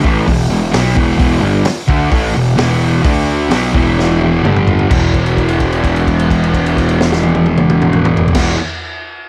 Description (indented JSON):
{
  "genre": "garage rock duo or trio",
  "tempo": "129 BPM",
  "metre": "4/4",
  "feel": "straight",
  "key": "unclear",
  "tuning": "A4 = 440 Hz",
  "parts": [
    { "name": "fuzz guitar", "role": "riff", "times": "0.0-8.6 s", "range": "E2 to D4", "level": "-16 LUFS", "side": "equal", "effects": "distortion" },
    { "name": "fuzz picked electric bass", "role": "bass", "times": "0.0-8.5 s", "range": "E1 to D2", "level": "-20 LUFS", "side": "equal", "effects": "overdrive" },
    { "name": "crunchy breakbeat drum kit", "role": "drums", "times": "0.0-8.5 s", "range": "crash cymbal, hi-hat, kick drum, snare drum, toms", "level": "-18 LUFS", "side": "equal", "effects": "none" }
  ],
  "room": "light reverb",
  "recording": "none",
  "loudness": "-13 LUFS",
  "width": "mono",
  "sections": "0.0-4.9 A section; 4.9-8.6 B section",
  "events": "drum fill 4.0-4.9; held note 4.9-8.3",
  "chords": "0.0 E5; 3.0 D5; 3.5 E5; 4.4 G5; 4.9 E5",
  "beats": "0.26 0.72 | 1.19 1.65 2.11 2.58 | 3.04 3.51 3.97 4.43 | 4.90 5.36 5.83 6.29 | 6.76 7.22 7.69 8.15"
}